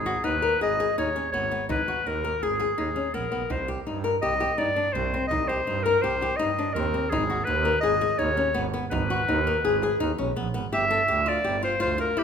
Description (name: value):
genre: contemporary instrumental, chamber music in an uneven meter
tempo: 166 BPM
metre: 5/4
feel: straight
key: unclear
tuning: A4 = 439 Hz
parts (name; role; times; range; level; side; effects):
- bright clarinet; melody; 0.0-12.2 s; G4 to Fb5; -26 LUFS; left 2 dB; none
- bright double bass; bass; 0.0-12.2 s; G1 to G2; -31 LUFS; right 5 dB; none
- flamenco guitar; arpeggios; 0.1-12.2 s; Cb4 to Bb4; -28 LUFS; left 4 dB; none
- frame drum; percussion; 0.8-10.6 s; none; -36 LUFS; right 3 dB; none
room: moderate recital hall reverb, RT60 1.6 s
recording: minimal, uncompressed stereo recording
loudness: -23 LUFS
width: side -7 dB against mid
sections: 0.0-10.7 A section; 10.7-12.2 B section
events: none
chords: 0.0 Abm; 3.5 Cm; 7.1 Abm; 10.7 G5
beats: 0.24 0.60 0.97 1.33 | 1.69 2.05 2.42 2.78 3.14 | 3.50 3.86 4.22 4.59 4.95 | 5.31 5.67 6.03 6.39 6.75 | 7.12 7.48 7.84 8.20 8.56 | 8.92 9.28 9.64 10.01 10.37 | 10.73 11.09 11.45 11.81 12.17